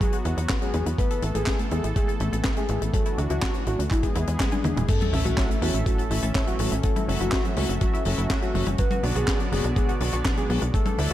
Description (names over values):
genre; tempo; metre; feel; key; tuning
italo disco; 123 BPM; 4/4; straight; A major; A4 = 437 Hz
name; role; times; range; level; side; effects
soft octave-layered synth lead; melody; 0.0-11.1 s; D4 to B4; -31 LUFS; left 1 dB; chorus, digital delay
warm analog pad; sustained chords; 0.0-11.1 s; D3 to A4; -32 LUFS; left 1 dB; chorus
analog pluck; arpeggios; 0.0-11.1 s; F#3 to G#5; -35 LUFS; left 2 dB; chorus, phaser, ping-pong delay
electronic kick drum; drums; 0.0-10.8 s; none; -25 LUFS; equal; none
tight funk drum kit; drums; 0.0-11.1 s; crash cymbal, handclaps, hi-hat, snare drum, toms; -30 LUFS; left 2 dB; none
tight sequencer bass; bass; 0.3-11.1 s; E1 to E2; -25 LUFS; equal; none
sub drop; sound effects; 4.9-6.8 s; none; -31 LUFS; equal; none
analog synth brass; stabs; 5.1-11.1 s; A2 to E5; -33 LUFS; right 2 dB; chorus
room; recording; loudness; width
small room ambience; dark, warm production; -22 LUFS; side -13 dB against mid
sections
0.0-4.9 A section; 4.9-11.1 B section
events
drum fill 4.4-4.9; impact 4.9-6.8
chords
0.0 Esus2; 1.0 Asus2; 2.9 Dadd9; 3.9 E; 4.9 A; 6.8 F#m7; 8.8 Bm